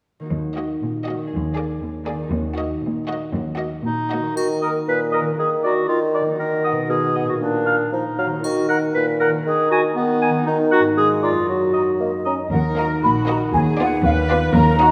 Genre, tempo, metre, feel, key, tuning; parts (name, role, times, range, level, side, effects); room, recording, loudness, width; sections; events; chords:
cinematic, playful, whimsical film cue; 118 BPM; 2/4; straight; Eb minor; A4 = 440 Hz
concert harp; arpeggios; 0.2-14.9 s; Gb2 to Gb5; -28 LUFS; equal
dark chamber cello section; bass; 0.3-4.3, 12.5-14.9 s; Eb2 to Bb2; -26 LUFS; equal
clear studio violin section; melody; 0.6-4.3, 12.8-14.9 s; D5 to Eb5; -36 LUFS; equal
rich chamber violin section; second line; 0.6-4.3, 12.8-14.9 s; Bb3 to Ab4; -32 LUFS; equal
rich chamber viola section; accompaniment; 0.6-4.3, 12.5-14.9 s; Bb3 to Cb5; -29 LUFS; equal
warm clarinet; second line; 3.8-12.2 s; Cb4 to Cb5; -24 LUFS; equal
mellow bassoon; accompaniment; 4.4-12.4 s; Bb2 to Db4; -24 LUFS; equal
triangle; percussion; 4.4-5.3, 8.4-9.4 s; -40 LUFS; equal
large flute ensemble; second line; 4.6-14.9 s; Eb5 to Cb6; -25 LUFS; equal
mellow cor anglais; second line; 4.6-12.3 s; D5 to Ab5; -29 LUFS; equal
clear studio double bass section; bass; 12.5-14.9 s; Bb1 to Eb2; -26 LUFS; equal
wet concert hall reverb, RT60 2.1 s; -20 LUFS; mono
0.3-4.4 A section; 4.4-12.5 B section; 12.5-14.9 B section
0.3 Ebm; 1.3 Bb7/Eb; 2.3 Ebm; 5.4 Bb/Eb; 6.4 Ebm; 6.9 B; 7.4 Bb; 8.4 Ebm; 9.5 Bb7b9/Eb; 10.5 Ebm; 11.0 Bb7/Ab; 11.5 Ebm/Gb; 12.5 Ebm; 13.5 Bb7b9/Eb